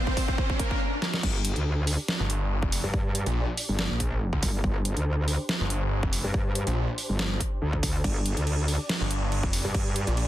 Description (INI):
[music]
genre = heavy wobble dubstep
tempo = 141 BPM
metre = 4/4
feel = swing 54% on 16ths, half-time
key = G minor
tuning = A4 = 440 Hz
[part]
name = soft supersaw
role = melody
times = 0.0-0.8 s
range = Bb3 to C5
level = -34 LUFS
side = right 2 dB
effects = digital delay
[part]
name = rich symphonic string section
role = sustained chords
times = 0.0-10.3 s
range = Bb2 to F5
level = -40 LUFS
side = equal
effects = sidechain pumping, low-pass filter
[part]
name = riser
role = sound effects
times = 0.0-0.8 s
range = none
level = -33 LUFS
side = equal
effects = none
[part]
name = electronic kick drum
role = drums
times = 0.1-9.8 s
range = none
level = -28 LUFS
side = equal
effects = overdrive
[part]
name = dubstep drum kit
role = drums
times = 0.2-10.3 s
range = crash cymbal, hi-hat, snare drum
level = -30 LUFS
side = right 1 dB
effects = overdrive
[part]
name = metallic wobble bass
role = bass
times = 1.2-10.1 s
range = G1 to G2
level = -27 LUFS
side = equal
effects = distortion, chorus, overdrive
[part]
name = snarling distorted saw bass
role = bass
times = 2.2-10.3 s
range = F1 to D2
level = -27 LUFS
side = equal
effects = distortion, overdrive
[sound]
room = digital ambience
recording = dense, heavily limited modern master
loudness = -25 LUFS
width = side -14 dB against mid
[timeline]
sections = 0.0-1.2 A section; 1.2-10.3 B section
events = build-up 0.0-1.2; drum fill 0.0-0.8, 1.0; riser 0.0-0.8; drop 1.2-10.3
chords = 0.0 Bb; 1.2 G5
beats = 0.38 0.81 | 1.23 1.66 2.08 2.51 | 2.94 3.36 3.79 4.21 | 4.64 5.06 5.49 5.92 | 6.34 6.77 7.19 7.62 | 8.04 8.47 8.89 9.32 | 9.74 10.17